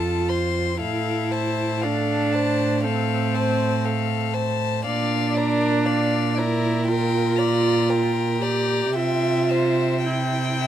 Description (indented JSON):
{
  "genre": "classical, slow romantic movement for string quartet",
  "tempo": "59 BPM",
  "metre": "4/4",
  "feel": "rubato",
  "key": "F major",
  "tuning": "A4 = 440 Hz",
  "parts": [
    { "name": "rich violin", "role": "melody", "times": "0.0-10.7 s", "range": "D5 to C6", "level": "-29 LUFS", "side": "left 9 dB", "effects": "none" },
    { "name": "warm violin", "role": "second line", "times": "0.0-10.7 s", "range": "A4 to G5", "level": "-28 LUFS", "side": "left 4 dB", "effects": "none" },
    { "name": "warm viola", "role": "accompaniment", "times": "0.0-10.7 s", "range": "C4 to G4", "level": "-23 LUFS", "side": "right 2 dB", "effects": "none" },
    { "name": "rich cello", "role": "bass", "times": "0.0-10.7 s", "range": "F2 to C3", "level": "-25 LUFS", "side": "right 4 dB", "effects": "none" }
  ],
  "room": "light reverb",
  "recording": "close, detailed microphones",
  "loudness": "-20 LUFS",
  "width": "side -10 dB against mid",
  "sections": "0.0-10.7 A section",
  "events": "none",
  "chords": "0.0 F; 0.8 F/A; 4.9 Bb; 6.9 Gm/Bb; 9.0 C",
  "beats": "| 0.81 1.83 2.85 3.86 | 4.86 5.87 6.88 7.90 | 8.96 10.06"
}